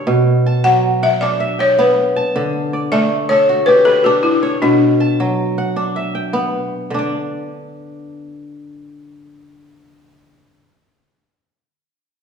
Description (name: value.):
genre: west african traditional.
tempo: 106 BPM (dotted quarters).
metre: 12/8.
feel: straight.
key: unclear.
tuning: A4 = 440 Hz.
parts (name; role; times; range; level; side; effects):
kora; arpeggios; 0.0-10.7 s; B2 to A5; -18 LUFS; right 2 dB; none.
balafon; melody; 0.6-6.5 s; D4 to F#5; -14 LUFS; left 2 dB; none.
room: wet recital hall reverb, RT60 1.5 s.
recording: recorded in a church or concert hall.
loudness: -13 LUFS.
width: side -6 dB against mid.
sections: 0.0-6.9 A section; 6.9-9.2 B section.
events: none.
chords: 0.1 Bm; 2.4 D; 4.6 Bm; 6.9 N.C..